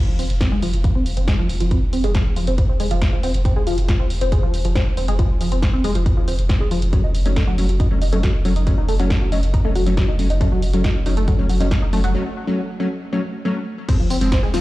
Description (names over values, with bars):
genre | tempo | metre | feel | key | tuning
driving peak-time techno | 138 BPM | 4/4 | straight | unclear | A4 = 440 Hz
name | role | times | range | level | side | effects
tight sequenced synth | riff | 0.1-14.6 s | F3 to Eb4 | -25 LUFS | equal | chorus, phaser, sidechain pumping, ping-pong delay
warm sub bass | bass | 0.1-14.6 s | F1 to Gb1 | -21 LUFS | equal | overdrive, sidechain pumping, low-pass filter
punchy analog drum machine | drums | 0.2-14.6 s | crash cymbal, hi-hat, ride cymbal, snare drum, tambourine | -30 LUFS | equal | sidechain pumping on hats, sidechain pumping on cymbals, sidechain pumping on perc
electronic kick drum | drums | 0.4-14.4 s | none | -19 LUFS | equal | none
wavetable chord stab | stabs | 6.9-14.6 s | F3 to Db4 | -24 LUFS | left 1 dB | sidechain pumping, ping-pong delay
sub drop | sound effects | 13.9-14.6 s | none | -32 LUFS | equal | none
room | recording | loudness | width
little or no reverb | played on a big sound system in a bare room, stone room reverb | -16 LUFS | side -17 dB against mid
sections
0.0-13.9 A section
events
break 12.1-13.9; impact 13.9-14.6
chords
0.0 Fm; 6.9 Gbm; 13.9 Fm